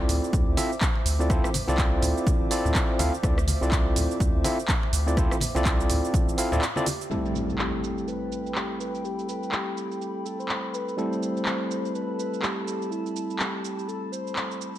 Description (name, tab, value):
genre	deep house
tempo	124 BPM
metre	4/4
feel	swing 59% on 16ths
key	A minor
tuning	A4 = 439 Hz
part	warbly tape-like pad	sustained chords	0.0-14.8 s	A4 to D6	-38 LUFS	equal	chorus, built-in reverb, sidechain pumping
part	overdriven tine electric piano	stabs	0.0-14.8 s	G3 to F5	-29 LUFS	equal	sidechain pumping, dub echo
part	round analog bass	bass	0.0-6.6 s	A1 to D2	-26 LUFS	equal	tube saturation, sidechain pumping
part	punchy analog drum machine	drums	0.1-14.8 s	handclaps, hi-hat, rim click, shaker	-30 LUFS	right 1 dB	low-pass filter on snare, low-pass filter on perc, low-pass filter on hats, low-pass filter on room
part	congas	percussion	0.1-7.0 s	none	-35 LUFS	left 2 dB	none
part	electronic kick drum	drums	0.3-6.3 s	none	-25 LUFS	equal	none
part	breathy flute-like synth lead	melody	6.9-14.6 s	E4 to C5	-34 LUFS	left 1 dB	lush chorus, dub echo
part	impact	sound effects	7.1-9.0 s	none	-35 LUFS	equal	none
room	light reverb, digital ambience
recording	none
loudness	-23 LUFS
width	side -13 dB against mid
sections	0.0-7.1 A section; 7.1-14.8 B section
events	break 6.6-7.1; impact 7.1-9.0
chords	0.0 Dm9; 7.1 Am9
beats	0.33 0.81 | 1.30 1.78 2.27 2.75 | 3.23 3.72 4.20 4.69 | 5.17 5.65 6.14 6.62 | 7.11 7.59 8.07 8.56 | 9.04 9.53 10.01 10.49 | 10.98 11.46 11.94 12.43 | 12.91 13.40 13.88 14.36